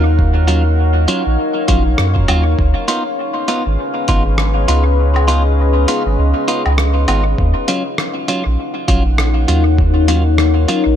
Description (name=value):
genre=ambient dub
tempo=100 BPM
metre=4/4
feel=swing 58% on 16ths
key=Eb minor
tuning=A4 = 441 Hz
part: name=deep dark ambient pad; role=sustained chords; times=0.0-11.0 s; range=Db4 to Gb5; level=-19 LUFS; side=left 3 dB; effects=chorus, built-in reverb
part: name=clean electric guitar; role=stabs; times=0.0-10.8 s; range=Gb3 to F4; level=-20 LUFS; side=right 1 dB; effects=dub echo
part: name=soft dub sub bass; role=bass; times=0.0-11.0 s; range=Ab1 to Gb2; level=-13 LUFS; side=equal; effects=none
part: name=electronic kick drum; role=drums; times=0.2-9.9 s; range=none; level=-17 LUFS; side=equal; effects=none
part: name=lo-fi sampler-style drum kit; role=drums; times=0.5-10.8 s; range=hi-hat, rim click, woodblock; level=-22 LUFS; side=equal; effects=dub echo
room=light reverb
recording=none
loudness=-12 LUFS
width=side -10 dB against mid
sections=0.0-7.4 A section; 7.4-11.0 A section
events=kick drops out 5.0-7.4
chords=0.0 Ebm7; 2.6 Db7; 7.4 Ebm7